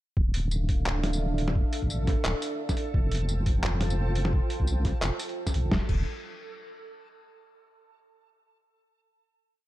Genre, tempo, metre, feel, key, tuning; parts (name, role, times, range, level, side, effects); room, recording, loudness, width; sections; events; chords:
half-time drum and bass; 173 BPM; 4/4; swing 56% on 16ths, half-time; D minor; A4 = 444 Hz
dark analog pad; sustained chords; 0.6-5.9 s; D4 to A5; -36 LUFS; right 2 dB; chorus, sidechain pumping
deep soft wobble bass; bass; 0.2-6.1 s; D1 to C2; -27 LUFS; equal; chorus
electronic kick drum; drums; 0.2-6.0 s; -27 LUFS; equal
backwards swelling texture; texture; 1.9-5.7 s; A4; -41 LUFS; right 2 dB; built-in reverb
boom bap sampler-style drum kit; drums; 0.3-6.0 s; crash cymbal, handclaps, hi-hat, snare drum, tambourine; -32 LUFS; equal
little or no reverb; dark, warm production; -25 LUFS; side -16 dB against mid
0.2-5.7 drop; 5.7-7.1 final chord
drop 0.2-5.7
0.2 Dm; 2.9 F; 5.7 Dm